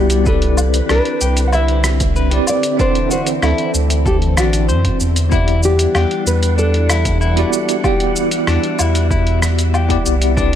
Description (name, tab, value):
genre	sunset chillout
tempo	95 BPM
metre	4/4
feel	straight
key	E minor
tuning	A4 = 438 Hz
part	nylon-string guitar	melody	0.0-9.1 s	F#4 to F#5	-21 LUFS	equal	digital delay
part	bell-like tine electric piano	accompaniment	0.0-10.6 s	G3 to F#5	-21 LUFS	moving between left 8 dB and right 7 dB	fast stereo tremolo, auto-pan, vintage 12-bit sampler grit, digital delay
part	soft string machine	sustained chords	0.0-10.6 s	D3 to F#5	-23 LUFS	left 1 dB	phaser, ensemble chorus
part	warm sub bass	bass	0.0-10.6 s	A1 to F#2	-16 LUFS	equal	none
part	dusty soul sampler-style drum kit	drums	0.1-10.6 s	hi-hat, rim click, shaker, woodblock	-22 LUFS	left 1 dB	none
part	clean electric guitar	arpeggios	0.3-10.6 s	D4 to C5	-24 LUFS	left 5 dB	digital delay
part	electronic kick drum	drums	0.3-10.5 s	none	-20 LUFS	equal	none
room	little or no reverb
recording	none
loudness	-13 LUFS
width	side -10 dB against mid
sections	0.0-10.6 A section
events	none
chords	0.3 Cmaj9; 2.8 D9; 5.3 Em9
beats	| 0.27 0.90 1.53 2.16 | 2.79 3.42 4.05 4.69 | 5.32 5.95 6.58 7.21 | 7.84 8.48 9.11 9.74 | 10.37